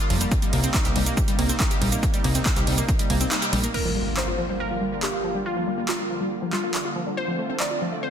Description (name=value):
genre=uplifting trance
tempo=140 BPM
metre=4/4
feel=straight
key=G minor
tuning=A4 = 440 Hz
part: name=lush unison pad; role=sustained chords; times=0.0-8.1 s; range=C3 to F4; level=-29 LUFS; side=right 1 dB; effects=chorus, sidechain pumping
part: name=analog pluck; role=arpeggios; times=0.0-8.0 s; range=F3 to G4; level=-29 LUFS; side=left 1 dB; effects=chorus, sidechain pumping, digital delay
part: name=plucky analog bass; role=bass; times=0.1-3.7 s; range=F1 to C2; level=-24 LUFS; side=equal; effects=sidechain pumping
part: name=punchy analog drum machine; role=drums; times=0.1-7.7 s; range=crash cymbal, handclaps, hi-hat, ride cymbal, shaker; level=-28 LUFS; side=right 1 dB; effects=overdrive, sidechain pumping on hats, sidechain pumping on perc, sidechain pumping on cymbals
part: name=electronic kick drum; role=drums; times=0.3-3.0 s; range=none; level=-23 LUFS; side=equal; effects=overdrive
part: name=glassy wavetable pluck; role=second line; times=3.7-8.1 s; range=F4 to D5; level=-28 LUFS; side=equal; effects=chorus, digital delay
part: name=impact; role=sound effects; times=3.7-5.5 s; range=none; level=-32 LUFS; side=equal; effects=none
room=moderate recital hall reverb, RT60 1.3 s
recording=dense, heavily limited modern master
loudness=-21 LUFS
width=side -8 dB against mid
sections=0.0-3.7 A section; 3.7-8.1 B section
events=drop 0.0-3.7; kick drops out 3.3-3.7; band accent 3.3; impact 3.7-5.5; filter sweep on synth arpeggio sound 3.7-8.1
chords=0.3 Cm7; 3.7 Gm7; 7.2 Dm7